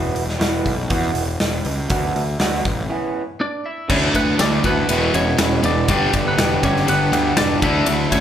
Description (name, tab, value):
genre	quiet-loud alternative rock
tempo	120 BPM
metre	4/4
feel	straight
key	unclear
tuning	A4 = 439 Hz
part	electric guitar through a small old amp	arpeggios	0.0-8.2 s	E2 to G4	-22 LUFS	right 1 dB	none
part	fuzz picked electric bass	bass	0.0-8.2 s	E1 to E2	-23 LUFS	equal	overdrive
part	big rock drum kit	drums	0.2-8.2 s	crash cymbal, hi-hat, kick drum, ride cymbal, snare drum	-22 LUFS	equal	none
part	twelve-string electric guitar	melody	3.4-8.2 s	B3 to E5	-22 LUFS	equal	none
part	thick fuzz guitar	riff	3.9-8.2 s	E2 to D4	-21 LUFS	left 1 dB	distortion
room	moderate large studio reverb, RT60 1.2 s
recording	band playing live in one room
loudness	-16 LUFS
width	side -10 dB against mid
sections	0.0-3.9 A section; 3.9-8.2 B section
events	break 2.9-3.9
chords	0.0 Esus2; 1.9 D6; 2.6 Aadd9; 3.9 Dadd9; 4.9 E; 5.9 G; 7.6 Dadd9